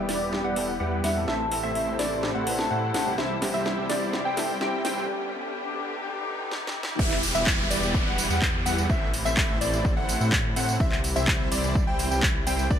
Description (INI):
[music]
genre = EDM, festival progressive house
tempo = 126 BPM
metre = 4/4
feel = straight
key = E minor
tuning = A4 = 441 Hz
[part]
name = warm grand piano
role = accompaniment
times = 0.0-5.1 s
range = G2 to B4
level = -35 LUFS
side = right 2 dB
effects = sidechain pumping, ping-pong delay
[part]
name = muted studio string section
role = sustained chords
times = 0.0-12.8 s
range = C3 to G4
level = -34 LUFS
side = left 2 dB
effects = sidechain pumping
[part]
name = plucky unison lead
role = arpeggios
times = 0.0-12.8 s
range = D5 to G5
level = -31 LUFS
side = equal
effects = sidechain pumping, ping-pong delay
[part]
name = dense compressed supersaw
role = riff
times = 0.0-12.8 s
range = G3 to G5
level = -31 LUFS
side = equal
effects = sidechain pumping, low-pass filter, ping-pong delay
[part]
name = detuned saw bass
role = bass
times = 0.0-12.8 s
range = E1 to A2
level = -31 LUFS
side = equal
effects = sidechain pumping
[part]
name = riser and downlifter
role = sound effects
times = 2.5-10.8 s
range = none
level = -34 LUFS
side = equal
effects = none
[part]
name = house drum kit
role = drums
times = 0.1-12.8 s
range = crash cymbal, handclaps, hi-hat, snare drum, tambourine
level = -30 LUFS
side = equal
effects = overdrive
[part]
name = vibraphone with soft mallets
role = melody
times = 0.4-3.1 s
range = D5 to A5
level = -34 LUFS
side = left 2 dB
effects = ping-pong delay
[part]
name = electronic kick drum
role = drums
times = 7.0-12.8 s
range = none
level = -26 LUFS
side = equal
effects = overdrive
[sound]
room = light reverb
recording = high-pass filter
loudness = -23 LUFS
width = side -9 dB against mid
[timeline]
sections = 0.0-7.0 A section; 7.0-12.8 B section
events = build-up 0.0-7.0; drum fill 0.0-5.1, 6.5-7.0; filter sweep on supersaw synth 0.0-7.0; filter sweep 0.0-7.0; riser 2.5-7.0; break 5.1-7.0; drop 7.0-12.8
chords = 0.0 Em; 1.3 Am; 3.2 C; 5.1 G; 7.0 Em; 8.9 Am; 10.8 C